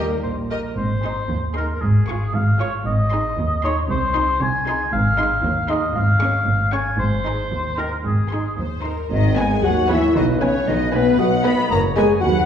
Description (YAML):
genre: cinematic, playful, whimsical film cue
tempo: 116 BPM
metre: 2/4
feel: straight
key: Ab major, G# minor from 9.1 s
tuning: A4 = 438 Hz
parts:
  - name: clear studio violin section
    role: melody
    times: 0.0-12.2 s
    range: Eb5 to Db6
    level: -34 LUFS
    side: left 4 dB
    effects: none
  - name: concert flute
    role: second line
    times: 0.0-0.6, 9.1-12.5 s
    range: B4 to B5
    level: -27 LUFS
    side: left 4 dB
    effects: none
  - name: warm oboe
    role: second line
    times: 0.0-12.5 s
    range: Ab4 to Ab5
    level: -24 LUFS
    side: left 1 dB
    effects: none
  - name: warm studio violin section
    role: second line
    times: 0.0-12.5 s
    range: G4 to B5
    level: -30 LUFS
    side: left 3 dB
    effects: none
  - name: rich studio viola section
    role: accompaniment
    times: 0.0-12.2 s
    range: B3 to B4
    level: -29 LUFS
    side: right 2 dB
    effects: none
  - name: dark French horn section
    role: sustained chords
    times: 0.0-0.5, 9.1-12.3 s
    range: G3 to B4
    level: -20 LUFS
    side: left 2 dB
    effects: none
  - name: rich studio cello section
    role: bass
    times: 0.0-12.5 s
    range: Eb2 to B3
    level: -26 LUFS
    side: right 1 dB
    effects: none
  - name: rich studio double bass section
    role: bass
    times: 0.0-12.5 s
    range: F#1 to Eb2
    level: -23 LUFS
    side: right 1 dB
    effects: none
  - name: clear tuba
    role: bass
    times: 9.1-12.5 s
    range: F#1 to D#2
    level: -25 LUFS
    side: equal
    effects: none
room: wet recital hall reverb, RT60 1.5 s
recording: heard from further back in the room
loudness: -17 LUFS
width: side -8 dB against mid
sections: 0.8-9.1 A section; 9.1-12.5 B section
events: none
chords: 0.0 Eb; 0.8 Ab; 1.8 Db/Ab; 2.9 Ab; 3.9 Ab/C; 4.9 Ab; 6.0 Db/Ab; 7.0 Ab; 7.5 Eb; 8.0 Ab; 9.1 G#m; 10.2 G#m/B; 11.2 B